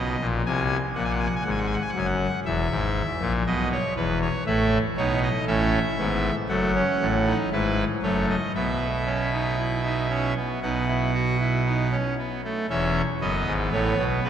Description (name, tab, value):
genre	classical, baroque-style 3-part fugue for pipe organ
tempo	59 BPM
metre	4/4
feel	straight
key	E major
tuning	A4 = 441 Hz
part	pipe organ, trumpet	solo	0.0-14.3 s	E1 to G#5	-22 LUFS	equal	none
room	wet cathedral reverb, RT60 4.2 s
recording	none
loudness	-22 LUFS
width	side -9 dB against mid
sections	0.0-12.7 A section; 12.7-14.3 B section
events	none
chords	0.5 G#7; 2.5 C#m/E; 4.5 F#m7; 8.6 Bsus4; 10.6 B; 12.7 E